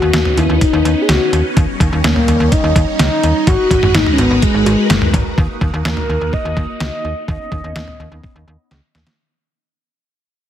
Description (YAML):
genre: synth-pop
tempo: 126 BPM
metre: 4/4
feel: straight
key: unclear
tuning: A4 = 440 Hz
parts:
  - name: mellow horn-like synth lead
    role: melody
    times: 0.0-8.7 s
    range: G#3 to D#5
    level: -17 LUFS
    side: left 1 dB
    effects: chorus, low-pass filter, digital delay
  - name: phased string machine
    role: sustained chords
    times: 0.0-9.2 s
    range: G3 to B4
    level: -22 LUFS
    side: left 1 dB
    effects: ensemble chorus, phaser, low-pass filter
  - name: slap-like FM bass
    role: bass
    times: 0.0-9.0 s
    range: F#1 to D#2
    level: -17 LUFS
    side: equal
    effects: none
  - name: detuned 8-bit digital drum machine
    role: drums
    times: 0.1-9.2 s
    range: cowbell, hi-hat, kick drum, snare drum, toms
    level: -17 LUFS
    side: equal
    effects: overdrive
room: light reverb, digital ambience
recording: heavily compressed radio sound, multiband compression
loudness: -12 LUFS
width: side -10 dB against mid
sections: 0.0-5.4 A section; 5.4-9.2 B section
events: fade-out 5.4-9.2; filter sweep 5.4-9.2; drum fill 8.7-9.2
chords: 0.0 Badd9/D#; 1.6 D#7; 3.5 G#m7; 5.4 D#m; 7.3 Badd9/D#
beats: 0.14 0.61 1.09 | 1.57 2.04 2.52 3.00 | 3.47 3.95 4.42 4.90 | 5.38 5.85 6.33 6.80 | 7.28 7.76 8.23 8.71